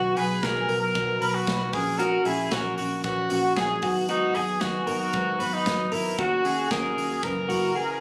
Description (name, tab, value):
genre	jangly indie pop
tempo	115 BPM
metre	4/4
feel	straight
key	B major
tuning	A4 = 440 Hz
part	clear trumpet	melody	0.0-8.0 s	D#4 to B4	-29 LUFS	equal	none
part	picked steel-string acoustic guitar	accompaniment	0.0-8.0 s	F#2 to F#4	-34 LUFS	equal	none
part	electric guitar through a small old amp	arpeggios	0.0-8.0 s	F#4 to B4	-30 LUFS	equal	analog chorus
part	vintage muted picked electric bass	bass	0.0-7.7 s	F#1 to D#2	-37 LUFS	equal	none
part	modern studio drum kit	drums	0.2-7.6 s	hi-hat, kick drum, snare drum	-36 LUFS	equal	none
room	moderate echo chamber reverb, RT60 2.1 s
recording	recorded on a phone in the room, studio reverb, compression, faint mains hum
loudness	-25 LUFS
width	mono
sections	0.0-8.0 A section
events	break 7.8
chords	0.0 B; 1.7 F#7/A#; 3.8 G#m7; 6.2 D#m7; 7.2 F#7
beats	0.43 0.95 1.48 | 2.00 2.52 3.05 3.57 | 4.09 4.61 5.14 5.66 | 6.18 6.71 7.23 7.75